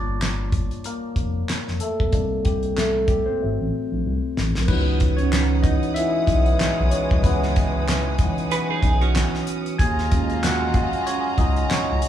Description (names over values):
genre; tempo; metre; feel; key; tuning
R&B, neo-soul; 94 BPM; 4/4; swing 56% on 16ths; unclear; A4 = 440 Hz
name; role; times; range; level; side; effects
barky tine electric piano; accompaniment; 0.0-12.1 s; Eb3 to Ab5; -24 LUFS; equal; overdrive, phaser
smooth synth bass; bass; 0.0-12.0 s; F1 to Eb2; -23 LUFS; equal; none
damped 70s drum kit; drums; 0.2-12.1 s; crash cymbal, handclaps, hi-hat, kick drum, snare drum; -23 LUFS; equal; none
rich studio string section; sustained chords; 4.7-12.1 s; Ab4 to D#6; -32 LUFS; equal; none
warm horn section; stabs; 6.0-12.0 s; B2 to F4; -30 LUFS; right 2 dB; none
clean electric guitar; second line; 8.5-9.8 s; C#4 to B4; -26 LUFS; right 6 dB; spring reverb
room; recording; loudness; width
moderate large studio reverb, RT60 0.9 s; band playing live in one room, small room reverb; -19 LUFS; side -10 dB against mid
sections
0.0-4.7 A section; 4.7-12.1 B section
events
tine electric piano solo 0.0-4.7, 4.7-12.1; drum fill 3.4-4.7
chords
0.0 Gm9; 2.1 Cm9; 3.4 G#7b9 (rootless); 4.7 C#m11; 9.8 Ebm11